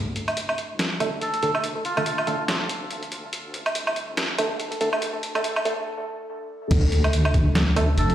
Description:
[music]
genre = deep dubstep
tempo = 142 BPM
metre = 4/4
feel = swing 57% on 16ths, half-time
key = D minor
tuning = A4 = 442 Hz
[part]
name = deep dark ambient pad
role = sustained chords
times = 0.0-8.1 s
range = D4 to A4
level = -35 LUFS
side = left 1 dB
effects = chorus, built-in reverb, vintage 12-bit sampler grit
[part]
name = deep soft wobble bass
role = bass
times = 0.0-8.1 s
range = E1 to D2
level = -24 LUFS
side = equal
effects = chorus, high-pass filter
[part]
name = trip hop sampler-style drum kit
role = drums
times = 0.2-8.1 s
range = crash cymbal, hi-hat, snare drum, woodblock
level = -26 LUFS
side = equal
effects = high-pass filter on hats, high-pass filter on snare, high-pass filter on toms, high-pass filter on perc, high-pass filter on cymbals, high-pass filter on room
[part]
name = percussive organ stab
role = stabs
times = 1.0-7.8 s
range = D3 to A4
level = -28 LUFS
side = right 2 dB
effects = chorus, dub echo
[part]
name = melodica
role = melody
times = 1.2-2.4, 8.0-8.1 s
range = F4 to A4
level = -30 LUFS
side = right 1 dB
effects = dub echo
[part]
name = electronic kick drum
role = drums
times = 6.7-7.4 s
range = none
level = -22 LUFS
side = equal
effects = none
[sound]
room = moderate echo chamber reverb, RT60 1.5 s, digital ambience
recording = played on a big sound system in a bare room, stone room reverb, high-pass filter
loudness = -22 LUFS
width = side -11 dB against mid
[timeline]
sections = 0.0-6.7 A section; 6.7-8.1 B section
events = build-up 0.0-6.7; filter sweep on synth stab 0.0-6.7; filter sweep on ambient pad 0.0-6.7; break 5.9-6.7; drop 6.7-8.1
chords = 0.0 D5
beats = 0.37 0.80 1.22 | 1.64 2.06 2.48 2.91 | 3.33 3.75 4.17 4.60 | 5.02 5.44 5.87 6.29 | 6.71 7.13 7.55 7.98

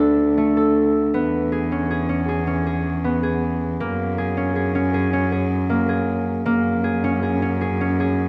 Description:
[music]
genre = contemporary instrumental, chamber music in an uneven meter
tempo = 158 BPM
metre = 7/4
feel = straight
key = F# mixolydian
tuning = A4 = 440 Hz
[part]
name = concert harp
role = arpeggios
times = 0.0-8.3 s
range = A3 to A4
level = -22 LUFS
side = equal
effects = none
[part]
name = warm cello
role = bass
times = 0.0-8.3 s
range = D2 to F#2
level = -26 LUFS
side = equal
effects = none
[sound]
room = wet concert hall reverb, RT60 1.9 s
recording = none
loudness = -21 LUFS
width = mono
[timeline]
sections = 0.0-8.3 A section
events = none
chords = 0.0 D5; 1.1 E6; 3.8 F#add9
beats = 0.38 0.76 | 1.14 1.52 1.91 2.29 2.67 3.05 3.43 | 3.81 4.18 4.56 4.94 5.32 5.70 6.08 | 6.46 6.84 7.23 7.61 8.00

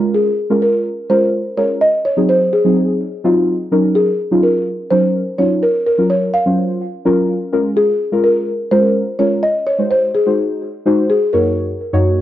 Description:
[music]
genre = dance-pop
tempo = 126 BPM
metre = 4/4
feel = straight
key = Db major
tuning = A4 = 440 Hz
[part]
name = deep mellow chord stab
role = accompaniment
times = 0.0-12.2 s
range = Gb2 to Db5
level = -16 LUFS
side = equal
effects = chorus, cassette tape
[part]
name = buzzing marimba with soft mallets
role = melody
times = 0.1-12.2 s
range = Ab4 to F5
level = -16 LUFS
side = equal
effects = cassette tape, analog delay
[sound]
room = light reverb, small room ambience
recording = home recording on cassette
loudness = -13 LUFS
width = side -13 dB against mid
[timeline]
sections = 0.0-12.2 A section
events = none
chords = 0.0 Db6; 1.8 Ab7; 3.7 Ebm7/Gb; 5.6 Gbmaj7; 7.5 Db6; 9.4 Ab7; 11.3 Ebm7/Gb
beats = 0.38 0.86 1.33 | 1.81 2.29 2.76 3.24 | 3.72 4.19 4.67 5.14 | 5.62 6.10 6.57 7.05 | 7.53 8.00 8.48 8.95 | 9.43 9.91 10.38 10.86 | 11.34 11.81

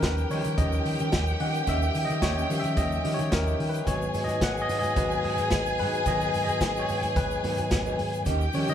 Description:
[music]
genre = disco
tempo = 109 BPM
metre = 4/4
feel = straight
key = unclear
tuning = A4 = 441 Hz
[part]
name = warm studio violin section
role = second line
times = 0.0-8.7 s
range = G4 to G#5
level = -30 LUFS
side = left 1 dB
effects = none
[part]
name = barky tine electric piano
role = accompaniment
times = 0.0-8.7 s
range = D#3 to F#5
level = -31 LUFS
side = left 2 dB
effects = overdrive
[part]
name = mellow electric guitar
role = accompaniment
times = 0.0-8.7 s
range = C#4 to F#5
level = -37 LUFS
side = right 4 dB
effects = none
[part]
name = dark French horn section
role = sustained chords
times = 0.0-8.7 s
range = D#3 to B4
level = -34 LUFS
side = equal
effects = none
[part]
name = fingered electric bass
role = bass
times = 0.0-8.7 s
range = G#1 to D#3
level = -30 LUFS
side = equal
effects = none
[part]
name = vintage drum kit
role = drums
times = 0.0-8.7 s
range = hi-hat, kick drum, snare drum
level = -30 LUFS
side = equal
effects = none
[part]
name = tube shaker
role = percussion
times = 0.0-8.7 s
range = none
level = -49 LUFS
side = left 5 dB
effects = none
[sound]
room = moderate studio reverb, RT60 0.8 s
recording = band playing live in one room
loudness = -24 LUFS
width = side -9 dB against mid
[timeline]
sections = 0.0-8.7 A section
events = tine electric piano solo 0.0-8.7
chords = 0.0 D#7; 3.9 G#m7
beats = 0.03 0.57 1.12 | 1.67 2.22 2.77 3.32 | 3.87 4.42 4.96 5.51 | 6.06 6.61 7.16 7.71 | 8.26

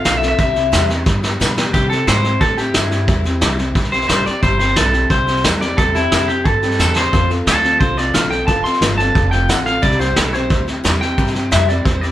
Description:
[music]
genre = rockabilly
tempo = 178 BPM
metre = 4/4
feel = straight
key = C major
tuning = A4 = 440 Hz
[part]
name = electric guitar through a small old amp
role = melody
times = 0.0-12.1 s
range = E4 to C6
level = -18 LUFS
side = left 1 dB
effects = none
[part]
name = picked steel-string acoustic guitar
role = accompaniment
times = 0.0-12.1 s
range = G2 to A4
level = -22 LUFS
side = left 2 dB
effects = none
[part]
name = upright bass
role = bass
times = 0.0-12.1 s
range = F1 to C3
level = -20 LUFS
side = equal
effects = none
[part]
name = vintage brush drum kit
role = drums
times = 0.1-12.1 s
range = hi-hat, kick drum, snare drum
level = -17 LUFS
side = equal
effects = none
[sound]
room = moderate studio ambience, RT60 0.5 s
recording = band playing live in one room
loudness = -13 LUFS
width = side -13 dB against mid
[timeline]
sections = 0.0-1.7 A section; 1.7-12.1 B section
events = drum fill 1.1-1.7, 6.8-7.1; clean electric guitar solo 1.7-12.1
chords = 0.4 C; 1.1 G; 1.7 C; 7.1 F; 9.8 C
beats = 0.05 | 0.39 0.72 1.06 1.40 | 1.74 2.07 2.41 2.75 | 3.08 3.42 3.76 4.09 | 4.43 4.77 5.11 5.44 | 5.78 6.12 6.46 6.79 | 7.13 7.47 7.81 8.14 | 8.48 8.82 9.16 9.50 | 9.83 10.17 10.51 10.85 | 11.18 11.52 11.86

